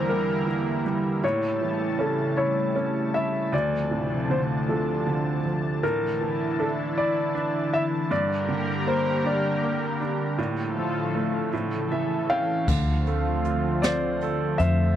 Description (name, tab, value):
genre	six-eight pop ballad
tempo	52 BPM (dotted quarters)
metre	6/8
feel	straight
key	D minor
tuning	A4 = 440 Hz
part	warm grand piano	melody	0.0-15.0 s	A4 to F5	-28 LUFS	left 2 dB	none
part	bright upright piano	accompaniment	0.0-15.0 s	D2 to G5	-27 LUFS	right 4 dB	none
part	lush unison pad	sustained chords	0.0-15.0 s	A2 to A5	-28 LUFS	left 2 dB	chorus
part	vintage muted fingered electric bass	bass	12.7-15.0 s	D2 to F2	-25 LUFS	left 1 dB	none
part	jazz brush drum kit	drums	12.7-14.8 s	crash cymbal, hi-hat, kick drum, snare drum	-27 LUFS	equal	none
room	little or no reverb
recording	dry, close 1970s-style studio recording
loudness	-23 LUFS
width	side -10 dB against mid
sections	0.0-12.7 A section; 12.7-15.0 B section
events	upright piano fill 11.5-12.7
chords	0.0 Em7b5; 1.2 A7; 3.5 Dm7; 5.8 Asus4; 8.1 Gm; 10.4 Dm/A; 11.5 A; 12.7 Dm7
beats	0.09 | 1.23 2.38 | 3.53 4.68 | 5.83 6.97 | 8.10 9.24 | 10.38 11.53 | 12.68 13.83